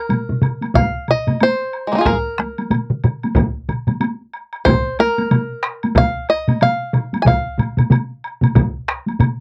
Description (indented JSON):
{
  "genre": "japanese traditional, taiko drum ensemble",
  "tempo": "92 BPM",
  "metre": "4/4",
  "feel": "swing 60% on 16ths",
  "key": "Bb suspended pentatonic",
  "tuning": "A4 = 440 Hz",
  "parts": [
    { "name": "bluegrass banjo", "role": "melody", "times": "0.0-8.5 s", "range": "Ab3 to Ab5", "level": "-21 LUFS", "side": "equal", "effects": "none" },
    { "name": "taiko ensemble", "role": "percussion", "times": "0.1-9.4 s", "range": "none", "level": "-24 LUFS", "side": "equal", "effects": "none" },
    { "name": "taiko ensemble", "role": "percussion", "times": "0.1-9.4 s", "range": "none", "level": "-21 LUFS", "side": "equal", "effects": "none" },
    { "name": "woodblock", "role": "percussion", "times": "0.1-9.4 s", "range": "none", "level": "-32 LUFS", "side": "equal", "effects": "none" },
    { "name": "taiko ensemble", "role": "percussion", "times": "0.8-8.7 s", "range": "none", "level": "-22 LUFS", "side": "equal", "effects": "none" },
    { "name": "taiko ensemble", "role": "percussion", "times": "2.1-9.4 s", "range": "none", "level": "-20 LUFS", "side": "equal", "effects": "none" }
  ],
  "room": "light reverb",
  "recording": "dark, warm production",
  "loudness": "-18 LUFS",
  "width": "mono",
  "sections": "0.0-9.4 A section",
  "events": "none",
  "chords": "none"
}